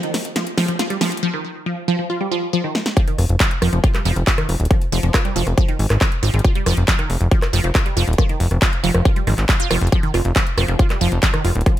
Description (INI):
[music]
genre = psychedelic trance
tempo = 138 BPM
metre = 4/4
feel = straight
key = F minor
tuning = A4 = 440 Hz
[part]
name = wide unison pluck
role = riff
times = 0.0-11.7 s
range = Eb3 to F4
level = -22 LUFS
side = right 1 dB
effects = auto-pan, sidechain pumping, digital delay
[part]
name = big-room dance drum kit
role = drums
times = 0.0-11.8 s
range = handclaps, hi-hat, rim click, snare drum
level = -23 LUFS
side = equal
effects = none
[part]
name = electronic kick drum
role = drums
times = 3.0-11.7 s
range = none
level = -17 LUFS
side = equal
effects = none
[part]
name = plucky analog bass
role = bass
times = 3.2-11.6 s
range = Eb1 to Ab1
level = -17 LUFS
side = equal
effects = tube saturation
[sound]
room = digital ambience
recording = none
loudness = -16 LUFS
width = side -13 dB against mid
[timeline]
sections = 0.0-3.0 A section; 3.0-11.8 B section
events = build-up 0.0-3.0; drum fill 0.0-1.2, 2.8; drop 3.0-11.8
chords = 0.0 N.C.; 3.0 F5